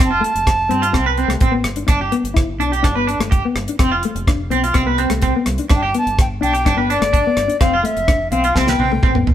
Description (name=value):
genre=highlife guitar band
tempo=126 BPM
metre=4/4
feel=straight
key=G mixolydian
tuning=A4 = 436 Hz
part: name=bright wooden flute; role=melody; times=0.0-1.4, 5.8-9.3 s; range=D5 to A5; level=-20 LUFS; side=left 1 dB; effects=none
part: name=mellow electric guitar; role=accompaniment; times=0.0-9.3 s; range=A3 to E4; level=-22 LUFS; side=left 6 dB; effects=none
part: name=electric guitar at the edge of break-up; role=arpeggios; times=0.0-9.1 s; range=C4 to B4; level=-20 LUFS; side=right 4 dB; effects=harmonic tremolo
part: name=deep dub fingered electric bass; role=bass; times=0.0-9.3 s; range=F1 to G2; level=-24 LUFS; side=equal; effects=none
part: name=damped 70s drum kit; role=drums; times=0.0-9.3 s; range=hi-hat, kick drum, rim click, snare drum, toms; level=-18 LUFS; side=equal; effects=none
room=moderate stone room reverb, RT60 1.2 s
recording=band playing live in one room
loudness=-14 LUFS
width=side -11 dB against mid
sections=0.0-9.3 A section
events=drum fill 8.6-9.3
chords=0.0 F; 0.9 C5; 1.9 G; 3.8 F; 4.7 Amadd9/C; 5.7 G; 7.6 F; 8.6 Cmaj7(no3)